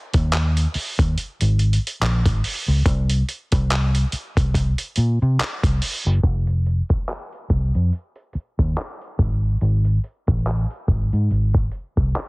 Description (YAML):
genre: contemporary R&B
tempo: 71 BPM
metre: 4/4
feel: swing 58% on 16ths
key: F minor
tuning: A4 = 440 Hz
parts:
  - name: vintage muted fingered electric bass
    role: bass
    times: 0.1-12.1 s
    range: F1 to C3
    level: -19 LUFS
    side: equal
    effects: none
  - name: dusty soul sampler-style drum kit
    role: drums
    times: 0.1-12.3 s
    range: handclaps, hi-hat, kick drum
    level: -22 LUFS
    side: equal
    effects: none
room: little or no reverb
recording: heavily compressed radio sound, low-pass filter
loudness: -18 LUFS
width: side -29 dB against mid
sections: 0.0-6.2 A section; 6.2-12.3 B section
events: filter sweep 6.2-12.3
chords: none